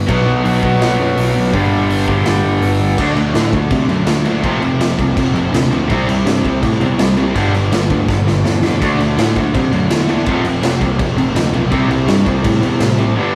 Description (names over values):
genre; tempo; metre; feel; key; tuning
punk rock; 165 BPM; 4/4; straight; unclear; A4 = 440 Hz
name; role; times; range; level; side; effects
crunchy overdriven guitar; riff; 0.0-13.3 s; F2 to E4; -23 LUFS; equal; none
overdriven picked electric bass; bass; 0.0-13.1 s; F1 to C3; -20 LUFS; equal; none
crunchy overdriven guitar; riff; 0.1-13.3 s; F2 to D4; -24 LUFS; equal; none
tight distorted guitar; riff; 0.1-13.3 s; F2 to D4; -21 LUFS; equal; distortion
raw garage drum kit; drums; 0.1-13.1 s; crash cymbal, hi-hat, kick drum, snare drum, splash cymbal; -22 LUFS; equal; none
room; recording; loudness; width
moderate small room reverb, RT60 0.5 s; rough rehearsal-room recording, warm saturation; -15 LUFS; mono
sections
0.0-3.0 A section; 3.0-13.3 B section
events
half time 0.0-3.0; drum fill 8.1-8.8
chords
0.1 Bm; 1.5 G; 3.0 D; 4.4 F; 5.9 C; 7.4 G; 8.8 D; 10.3 F; 11.7 C